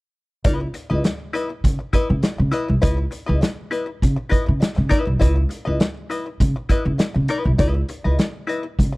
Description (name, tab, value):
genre	funk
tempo	101 BPM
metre	4/4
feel	straight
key	C# minor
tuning	A4 = 436 Hz
part	hollow-body jazz guitar	accompaniment	0.4-9.0 s	E4 to D#5	-25 LUFS	left 3 dB	wah
part	vintage drum kit	drums	0.4-8.9 s	hi-hat, kick drum, snare drum	-21 LUFS	equal	none
part	upright bass	bass	0.5-8.9 s	B#1 to C#3	-20 LUFS	equal	none
room	studio reverb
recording	none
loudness	-18 LUFS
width	side -23 dB against mid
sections	0.4-9.0 A section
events	none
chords	0.4 C#m9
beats	| 0.45 1.04 1.64 2.23 | 2.83 3.42 4.02 4.62 | 5.21 5.81 6.41 7.00 | 7.60 8.19 8.79